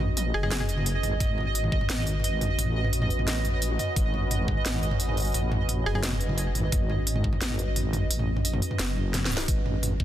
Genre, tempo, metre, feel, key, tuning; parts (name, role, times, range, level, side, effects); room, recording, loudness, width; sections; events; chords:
half-time drum and bass; 174 BPM; 4/4; half-time; G# phrygian; A4 = 439 Hz
deep dark ambient pad; sustained chords; 0.0-10.0 s; C#4 to D#5; -35 LUFS; equal; chorus, built-in reverb, sidechain pumping
deep soft wobble bass; bass; 0.0-10.0 s; F#1 to D#2; -28 LUFS; equal; chorus
drum and bass drum kit; drums; 0.0-10.0 s; hi-hat, snare drum, toms; -29 LUFS; equal
pulsing gated texture; texture; 0.0-9.5 s; D#5; -34 LUFS; right 5 dB; chorus, built-in reverb
mallet-like synth pluck; melody; 0.3-0.7, 5.9-6.0 s; G#4; -35 LUFS; equal; chorus, tape echo
electronic kick drum; drums; 1.2-1.8, 4.0-4.6, 6.7-7.3, 9.5-10.0 s; -26 LUFS; equal
digital ambience; dense, heavily limited modern master; -24 LUFS; side -12 dB against mid
0.0-9.5 A section
drop 0.0-9.5; kick drops out 8.8-9.5; drum fill 9.1-9.5
0.0 G#m